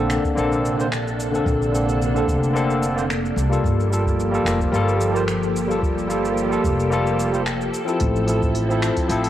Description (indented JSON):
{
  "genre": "sunset chillout",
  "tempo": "110 BPM",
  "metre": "4/4",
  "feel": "straight",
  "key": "unclear",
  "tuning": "A4 = 439 Hz",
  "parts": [
    { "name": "barky tine electric piano", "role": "accompaniment", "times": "0.0-9.3 s", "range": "D3 to C5", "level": "-22 LUFS", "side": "equal", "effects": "auto-pan, cassette tape, analog delay" },
    { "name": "soft string machine", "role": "sustained chords", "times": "0.0-9.3 s", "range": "C3 to A4", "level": "-25 LUFS", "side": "equal", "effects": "phaser, ensemble chorus, cassette tape" },
    { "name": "upright bass", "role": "bass", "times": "0.0-9.3 s", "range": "F1 to C2", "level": "-24 LUFS", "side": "equal", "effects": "transformer saturation" },
    { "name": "smooth R&B drum kit", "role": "drums", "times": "0.1-9.3 s", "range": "finger snaps, hi-hat, shaker", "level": "-32 LUFS", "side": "equal", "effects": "cassette tape" },
    { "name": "electronic kick drum", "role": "drums", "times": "0.2-9.1 s", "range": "none", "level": "-24 LUFS", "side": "equal", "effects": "overdrive, cassette tape" }
  ],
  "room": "light reverb",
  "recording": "home recording on cassette",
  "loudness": "-18 LUFS",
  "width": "side -12 dB against mid",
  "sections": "0.0-9.3 A section",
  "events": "none",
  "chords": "0.0 Bbmaj9; 3.6 Gm9; 8.0 Fmaj7/A",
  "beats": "0.37 0.92 | 1.46 2.01 2.55 3.10 | 3.64 4.19 4.74 5.28 | 5.83 6.37 6.92 7.46 | 8.01 8.55 9.10"
}